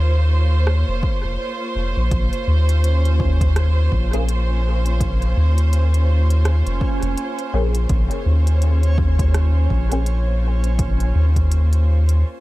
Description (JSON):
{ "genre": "ambient dub", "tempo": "83 BPM", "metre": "4/4", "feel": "swing 59% on 16ths", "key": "Bb minor", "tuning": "A4 = 436 Hz", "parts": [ { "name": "clear studio string section", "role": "sustained chords", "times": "0.0-12.2 s", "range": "Bb3 to Db5", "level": "-27 LUFS", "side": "right 2 dB", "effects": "none" }, { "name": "soft dub sub bass", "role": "bass", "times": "0.0-12.2 s", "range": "F1 to Eb2", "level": "-16 LUFS", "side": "equal", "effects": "none" }, { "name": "organic electronic drum kit", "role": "drums", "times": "0.7-12.2 s", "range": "hi-hat, rim click", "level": "-33 LUFS", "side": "right 1 dB", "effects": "dub echo" }, { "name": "electronic kick drum", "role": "drums", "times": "1.0-11.5 s", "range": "none", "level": "-22 LUFS", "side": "equal", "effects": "overdrive" }, { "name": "backwards swelling texture", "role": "texture", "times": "2.7-12.2 s", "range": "Db4", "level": "-31 LUFS", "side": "right 3 dB", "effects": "built-in reverb" }, { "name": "filtered dub chord stab", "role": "stabs", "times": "4.1-10.0 s", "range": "Bb3 to Ab4", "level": "-32 LUFS", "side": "left 2 dB", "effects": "phaser, ensemble chorus, dub echo" } ], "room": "little or no reverb", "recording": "none", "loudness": "-16 LUFS", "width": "side -18 dB against mid", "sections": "0.0-12.4 A section", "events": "break 12.2", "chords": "0.0 Bbm" }